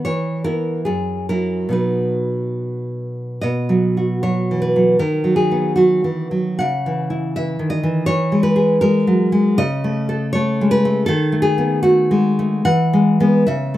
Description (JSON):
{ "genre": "romantic piece for solo classical guitar", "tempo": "67-83 BPM", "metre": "2/4", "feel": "rubato", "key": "B major, E major from 9.6 s", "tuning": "A4 = 436 Hz", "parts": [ { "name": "nylon-string guitar", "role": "solo", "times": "0.0-13.8 s", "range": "F#2 to F#5", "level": "-15 LUFS", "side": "equal", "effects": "none" } ], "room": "little or no reverb", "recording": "recorded outdoors, with no room sound", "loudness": "-15 LUFS", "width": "side -14 dB against mid", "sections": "0.0-3.5 A section; 3.5-13.8 B section", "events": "none", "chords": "0.1 C#m7/E; 0.9 F#7; 1.7 B; 5.0 B/D#; 6.6 C#m; 8.1 E69; 9.6 A/C#; 11.1 B7/D#; 12.7 E" }